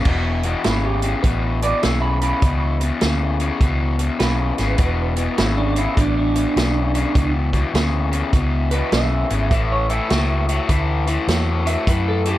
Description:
electric blues shuffle; 102 BPM; 4/4; swing 64% on 8ths; E mixolydian; A4 = 440 Hz
raw garage guitar; riff; 0.0-12.4 s; E2 to F#3; -22 LUFS; left 4 dB; overdrive
vintage muted fingered electric bass; bass; 0.0-12.3 s; E1 to F#2; -21 LUFS; equal
vintage drum kit; drums; 0.1-12.3 s; crash cymbal, hi-hat, kick drum, snare drum; -21 LUFS; right 1 dB
electric guitar through a small old amp; second line; 0.6-12.4 s; D4 to B5; -24 LUFS; right 3 dB; lush chorus
little or no reverb; -17 LUFS; side -14 dB against mid
0.1-12.4 A section
clean electric guitar solo 0.1-12.4
0.1 E6; 9.5 A6
| 0.06 0.65 1.24 1.83 | 2.42 3.01 3.60 4.20 | 4.79 5.38 5.97 6.56 | 7.15 7.74 8.33 8.92 | 9.51 10.10 10.69 11.28 | 11.87

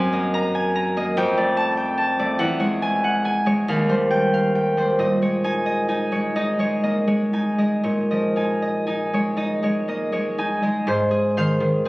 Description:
classical, solo harp piece; 38-49 BPM (dotted quarters); 6/8; rubato; A4 = 440 Hz
concert harp; solo; 0.0-11.9 s; Eb2 to Bb5; -19 LUFS; equal
moderate recital hall reverb, RT60 1.5 s; recorded on a phone in the room, studio reverb, compression; -19 LUFS; side -20 dB against mid
0.0-10.9 A section; 10.9-11.9 B section
0.0 Gb69; 1.2 F69; 2.4 E69; 3.7 Eb69; 5.0 Bbm11; 10.9 Ab6
1.17 | 2.40 3.67 | 5.01 6.37 | 7.85 9.38 | 10.88

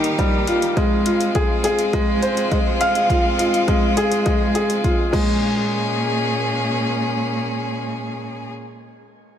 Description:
piano and strings electronica; 103 BPM; 4/4; straight; Bb dorian; A4 = 440 Hz
clear string quartet; sustained chords; 0.0-8.5 s; Bb2 to Ab4; -23 LUFS; left 1 dB; sidechain pumping, shimmer reverb
clear upright piano; riff; 0.0-9.4 s; G3 to F5; -20 LUFS; equal; ping-pong delay, shimmer reverb
deep house drum kit; drums; 0.0-5.2 s; crash cymbal, hi-hat; -31 LUFS; left 3 dB; overdrive
electronic kick drum; drums; 0.2-5.2 s; -22 LUFS; equal; overdrive
moderate recital hall reverb, RT60 1.6 s, small room ambience; -17 LUFS; side -9 dB against mid
0.0-5.4 A section; 5.4-7.8 B section
0.0 Ebadd9; 0.8 Fm; 5.1 Bbm7
0.18 | 0.76 1.34 1.93 2.51 | 3.09 3.67 4.26 4.84 | 5.42 6.00 6.59 7.17

